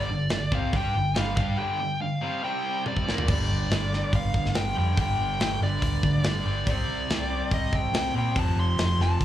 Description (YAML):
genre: hard rock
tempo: 142 BPM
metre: 4/4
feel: straight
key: unclear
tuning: A4 = 440 Hz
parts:
  - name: dark smooth lead guitar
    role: melody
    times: 0.0-9.2 s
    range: D5 to C6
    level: -30 LUFS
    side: equal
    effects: overdrive, slapback echo
  - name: cranked stack guitar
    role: riff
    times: 0.0-3.3 s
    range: G2 to G4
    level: -34 LUFS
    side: right 1 dB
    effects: overdrive, slapback echo
  - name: overdriven semi-hollow guitar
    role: riff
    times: 0.0-9.2 s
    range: F2 to G4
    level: -33 LUFS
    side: left 8 dB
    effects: slapback echo
  - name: overdriven semi-hollow guitar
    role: riff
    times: 0.0-9.2 s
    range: F2 to G4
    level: -34 LUFS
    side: right 7 dB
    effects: slapback echo
  - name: hollow-body short-scale picked electric bass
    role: bass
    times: 0.0-9.2 s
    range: F1 to Bb2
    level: -27 LUFS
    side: equal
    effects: none
  - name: tight metal drum kit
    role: drums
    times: 0.3-9.2 s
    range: crash cymbal, hi-hat, kick drum, snare drum, toms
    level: -28 LUFS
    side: equal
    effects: none
room: studio ambience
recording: live gig heard through the venue's PA, club ambience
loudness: -23 LUFS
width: side -12 dB against mid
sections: 0.0-3.3 A section; 3.3-9.2 B section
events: break 1.6-3.3; drum fill 2.9-3.3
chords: 0.0 G5; 2.4 C5; 3.1 Bb; 3.3 G5; 6.7 C5; 8.4 F